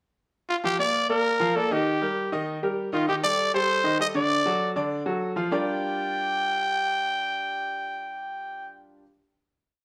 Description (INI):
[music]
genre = latin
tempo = 197 BPM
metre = 4/4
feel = straight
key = G minor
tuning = A4 = 439 Hz
[part]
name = growling trumpet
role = melody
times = 0.5-8.7 s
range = F4 to G5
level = -27 LUFS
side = equal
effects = slapback echo
[part]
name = bright upright piano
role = accompaniment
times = 0.6-9.0 s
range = D3 to F5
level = -30 LUFS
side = equal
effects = none
[sound]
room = moderate large studio reverb, RT60 0.9 s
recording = none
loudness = -26 LUFS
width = mono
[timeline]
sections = 0.0-0.6 pickup bar; 0.6-5.5 A section; 5.5-8.0 final chord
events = none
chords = 0.0 N.C.; 0.6 Ebmaj9; 1.9 Eb; 3.1 Am7b5; 4.3 D; 5.5 Gm7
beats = 0.03 0.34 | 0.64 0.95 1.25 1.56 | 1.86 2.17 2.47 2.78 | 3.08 3.39 3.69 4.00 | 4.30 4.61 4.91 5.21 | 5.52 5.82 6.13 6.43 | 6.74 7.05 7.35 7.66